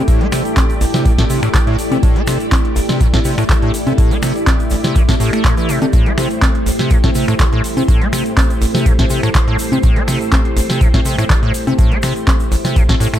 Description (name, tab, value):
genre	acid house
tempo	123 BPM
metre	4/4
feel	swing 53% on 16ths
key	A minor pentatonic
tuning	A4 = 442 Hz
part	string machine, full ensemble	sustained chords	0.0-13.2 s	A3 to D5	-20 LUFS	equal	ensemble chorus, sidechain pumping
part	liquid acid bass	riff	0.0-13.2 s	A1 to A3	-18 LUFS	equal	chorus, overdrive, sidechain pumping, dub echo
part	booming analog drum machine	drums	0.1-13.2 s	congas, finger snaps, handclaps, hi-hat, snare drum	-20 LUFS	left 1 dB	none
part	electronic kick drum	drums	0.1-13.0 s	none	-14 LUFS	equal	none
part	egg shaker	percussion	0.1-13.2 s	none	-31 LUFS	left 4 dB	none
room	little or no reverb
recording	dark, warm production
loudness	-12 LUFS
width	side -11 dB against mid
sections	0.0-13.2 A section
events	none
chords	0.0 Am7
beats	| 0.08 0.57 1.05 1.54 | 2.03 2.52 3.01 3.49 | 3.98 4.47 4.96 5.45 | 5.93 6.42 6.91 7.40 | 7.88 8.37 8.86 9.35 | 9.84 10.32 10.81 11.30 | 11.79 12.27 12.76